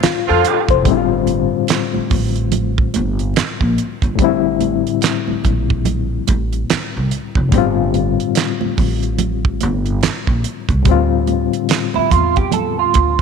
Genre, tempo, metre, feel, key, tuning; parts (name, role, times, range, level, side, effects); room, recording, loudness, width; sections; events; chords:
R&B, neo-soul; 72 BPM; 4/4; swing 62% on 16ths; A4 = 440 Hz
overdriven reed electric piano; accompaniment; 0.0-13.2 s; A2 to C5; -18 LUFS; left 12 dB; fast tremolo
upright bass; bass; 0.0-13.2 s; F1 to F2; -19 LUFS; right 1 dB
damped 70s drum kit; drums; 0.0-13.2 s; handclaps, hi-hat, kick drum, snare drum; -18 LUFS; right 4 dB
congas; percussion; 0.0-13.2 s; -25 LUFS; right 14 dB
clear horn section; stabs; 0.3-0.6, 13.2 s; D3 to F4; -20 LUFS; right 13 dB
electric guitar through a small old amp; second line; 12.0-13.2 s; E4 to A4; -16 LUFS; right 14 dB; analog chorus
light reverb, studio ambience; 1960s-style stereo with parts hard left and right; -14 LUFS; side -6 dB against mid
0.0-13.2 A section
band accent 0.0-0.9, 10.9-13.2
0.0 Dm7; 0.9 G9sus4; 4.2 Am7; 7.5 G9sus4; 10.9 Dm7